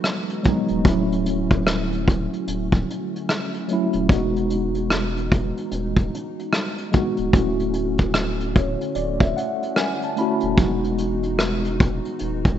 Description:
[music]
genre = lo-fi hip hop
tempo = 74 BPM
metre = 4/4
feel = swing 62% on 16ths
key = E major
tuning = A4 = 439 Hz
[part]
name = mellow tine electric piano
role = accompaniment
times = 0.0-12.6 s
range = F3 to B5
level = -23 LUFS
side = equal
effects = medium stereo tremolo, low-pass filter
[part]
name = hollow soft pad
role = sustained chords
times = 0.0-12.6 s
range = D3 to F#4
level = -34 LUFS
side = equal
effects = ensemble chorus, low-pass filter
[part]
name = vintage brush drum kit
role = drums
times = 0.0-12.6 s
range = hi-hat, kick drum, rim click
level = -21 LUFS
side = equal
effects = none
[part]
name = saturated sub bass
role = bass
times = 0.7-12.6 s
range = C#1 to E1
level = -28 LUFS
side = equal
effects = none
[sound]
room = light reverb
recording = rough home demo mix, nothing above 7.9 kHz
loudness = -19 LUFS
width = side -10 dB against mid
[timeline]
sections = 0.0-12.6 A section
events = tine electric piano fill 8.1-10.6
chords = 0.0 Emaj9; 0.8 Dmaj7; 4.1 Emaj9; 7.3 Dmaj7; 10.6 Emaj9

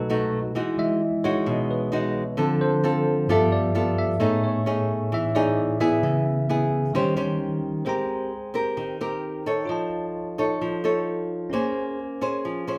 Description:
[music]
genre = bossa nova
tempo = 131 BPM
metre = 4/4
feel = straight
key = Ab major from 7.9 s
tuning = A4 = 440 Hz
[part]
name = bell-like tine electric piano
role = accompaniment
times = 0.0-12.8 s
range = G2 to Bb5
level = -29 LUFS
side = equal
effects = none
[part]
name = nylon-string guitar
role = accompaniment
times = 0.0-12.8 s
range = B2 to Db5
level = -27 LUFS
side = equal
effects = none
[sound]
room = moderate large studio reverb, RT60 0.9 s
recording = none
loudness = -24 LUFS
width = mono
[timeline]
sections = 0.0-7.9 A section; 7.9-12.8 B section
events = tine electric piano solo 0.0-7.9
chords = 0.0 B7; 0.5 Emaj9; 2.4 Dm7; 3.3 G9; 4.2 Amaj9#11; 6.0 C#m7; 6.9 D#6; 7.9 Abmaj9; 9.7 Faug7; 11.5 Bbm9

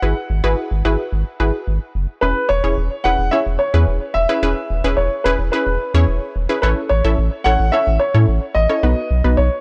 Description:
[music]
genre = synth-pop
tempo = 109 BPM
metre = 4/4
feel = straight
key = unclear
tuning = A4 = 441 Hz
[part]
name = dark baby grand piano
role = melody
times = 0.0-9.6 s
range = B4 to F#5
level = -22 LUFS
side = equal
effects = tape echo
[part]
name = analog pluck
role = accompaniment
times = 0.0-9.5 s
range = B3 to E5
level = -24 LUFS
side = equal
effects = chorus
[part]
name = round analog bass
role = bass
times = 0.0-9.5 s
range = E1 to A2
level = -19 LUFS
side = equal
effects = none
[sound]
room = little or no reverb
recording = dry, gritty hardware recording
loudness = -18 LUFS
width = mono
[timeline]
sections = 0.0-2.2 A section; 2.2-9.6 B section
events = none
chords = 0.0 Eadd9; 2.2 E6; 6.6 A; 8.8 B

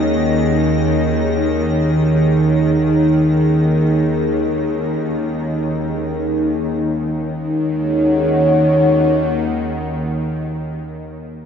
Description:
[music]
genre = dark ambient drone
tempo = free time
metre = none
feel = none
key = Eb minor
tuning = A4 = 440 Hz
[part]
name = deep dark ambient pad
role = sustained chords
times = 0.0-10.9 s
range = Eb4 to Gb5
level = -18 LUFS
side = equal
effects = chorus, built-in reverb
[part]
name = bowed-like drone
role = drone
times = 0.0-10.4 s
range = Eb2 to Eb3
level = -18 LUFS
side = equal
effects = built-in reverb
[part]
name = icy glass pad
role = texture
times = 0.0-6.9 s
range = Eb5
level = -31 LUFS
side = left 3 dB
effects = chorus, built-in reverb
[sound]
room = wet lush hall reverb, RT60 2.6 s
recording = dreamy mix soaked in reverb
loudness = -15 LUFS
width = side -7 dB against mid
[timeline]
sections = 0.0-6.8 A section; 6.8-11.3 B section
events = fade-out on ambient pad 0.0-6.8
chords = 0.0 Ebm7

